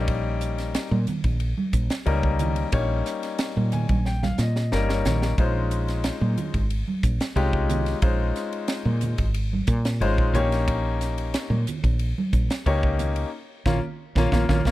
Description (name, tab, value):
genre	electric jazz fusion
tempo	90 BPM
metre	4/4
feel	straight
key	unclear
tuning	A4 = 440 Hz
part	bright grand piano	accompaniment	0.0-14.7 s	G3 to Ab5	-27 LUFS	left 4 dB	none
part	woody fretless electric bass	bass	0.0-14.7 s	G1 to Bb2	-24 LUFS	equal	none
part	crisp fusion drum kit	drums	0.1-14.7 s	hi-hat, kick drum, ride cymbal, snare drum	-28 LUFS	right 1 dB	none
part	congas	percussion	0.9-14.7 s	none	-29 LUFS	right 4 dB	none
room	small room reverb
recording	dry, close 1970s-style studio recording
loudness	-22 LUFS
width	side -16 dB against mid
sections	0.0-14.7 A section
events	grand piano fill 3.4-5.4, 14.0-14.7; drum fill 4.1-5.4; band accent 13.3-14.7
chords	0.0 Eb7/Bb; 5.4 Dbmaj9; 10.4 Eb7/Bb; 13.3 Bbm